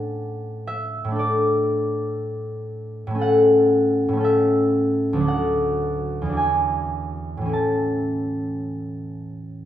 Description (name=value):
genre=classical, solo harp piece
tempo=50-60 BPM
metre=4/4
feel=rubato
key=A major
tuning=A4 = 438 Hz
part: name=concert harp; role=solo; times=0.0-9.7 s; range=D2 to A5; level=-20 LUFS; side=equal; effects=none
room=moderate recital hall reverb, RT60 1.5 s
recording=none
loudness=-19 LUFS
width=side -11 dB against mid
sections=0.0-9.7 A section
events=none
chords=0.0 D/A; 3.2 A; 5.3 D; 6.4 E7; 7.5 A